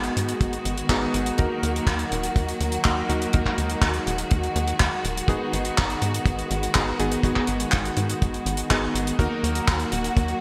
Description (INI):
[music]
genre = italo disco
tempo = 123 BPM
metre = 4/4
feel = straight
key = G# minor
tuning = A4 = 440 Hz
[part]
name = rich studio string section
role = sustained chords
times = 0.0-10.4 s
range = D#3 to F#4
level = -31 LUFS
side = equal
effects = none
[part]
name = bright electric grand piano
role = stabs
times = 0.0-10.4 s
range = A#3 to A#4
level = -31 LUFS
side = equal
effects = low-pass filter, delay
[part]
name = tight sequencer bass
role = bass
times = 0.0-10.3 s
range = D#1 to G#2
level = -30 LUFS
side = equal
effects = none
[part]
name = damped 70s drum kit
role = drums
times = 0.0-10.4 s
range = handclaps, hi-hat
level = -30 LUFS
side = equal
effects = small room ambience
[part]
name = kick drum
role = drums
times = 0.4-10.3 s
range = none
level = -25 LUFS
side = equal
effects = small room ambience
[sound]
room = wet lush hall reverb, RT60 1.8 s, small room ambience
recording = bright 1980s-style digital production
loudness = -24 LUFS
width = mono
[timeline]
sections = 0.0-10.4 A section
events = none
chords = 0.0 G#m7; 1.4 D#m; 5.3 G#m7; 9.2 D#m